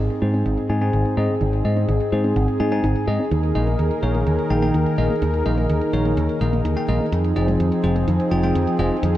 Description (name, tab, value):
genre	italo disco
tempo	126 BPM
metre	4/4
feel	straight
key	unclear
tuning	A4 = 440 Hz
part	warm analog pad	sustained chords	0.0-9.2 s	Eb3 to Bb4	-24 LUFS	right 1 dB	chorus
part	analog pluck	arpeggios	0.0-9.1 s	Eb3 to C4	-31 LUFS	right 2 dB	none
part	bell-like tine electric piano	stabs	0.0-9.0 s	Ab2 to Ab5	-23 LUFS	left 2 dB	low-pass filter, digital delay
part	picked electric bass with an envelope filter	bass	0.0-9.2 s	F1 to Ab2	-21 LUFS	equal	none
part	electronic hi-hat	drums	0.1-9.2 s	none	-46 LUFS	right 3 dB	low-pass filter on hats, low-pass filter on snare, low-pass filter on toms, low-pass filter on room
room	light reverb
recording	none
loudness	-18 LUFS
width	side -14 dB against mid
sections	0.0-9.2 A section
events	none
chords	0.0 Ab; 3.3 Ebsus4; 7.1 Fm7